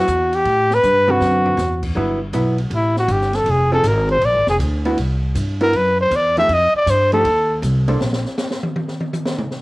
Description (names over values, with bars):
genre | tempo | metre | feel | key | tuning
jazz, small-group swing and bop | 159 BPM | 4/4 | swing 67% on 8ths | unclear | A4 = 440 Hz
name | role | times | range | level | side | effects
clear trumpet | melody | 0.0-7.6 s | E4 to E5 | -16 LUFS | equal | cassette tape
vintage hollow-body jazz guitar | accompaniment | 0.0-8.0 s | D3 to C5 | -21 LUFS | right 1 dB | none
upright bass | bass | 0.0-8.2 s | F1 to A2 | -20 LUFS | equal | none
open jazz drum kit | drums | 0.1-9.6 s | crash cymbal, hi-hat, kick drum, ride cymbal, snare drum, toms | -27 LUFS | equal | cassette tape
room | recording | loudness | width
light reverb, small room ambience | home recording on cassette | -15 LUFS | side -21 dB against mid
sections
0.0-2.0 A section; 2.0-9.6 B section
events
drum fill 0.8-1.6; trumpet solo 2.0-9.6; drum solo 8.0-9.6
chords
0.4 Am7; 1.2 D13; 2.0 Gmaj13; 3.5 Fm7; 4.2 Bb7; 5.0 C(#11); 6.5 F9; 8.0 N.C.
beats
0.07 | 0.45 0.83 1.20 1.58 | 1.96 2.33 2.71 3.09 | 3.47 3.85 4.22 4.60 | 4.98 5.35 5.73 6.11 | 6.49 6.86 7.24 7.62 | 8.00 8.37 8.75 9.13 | 9.51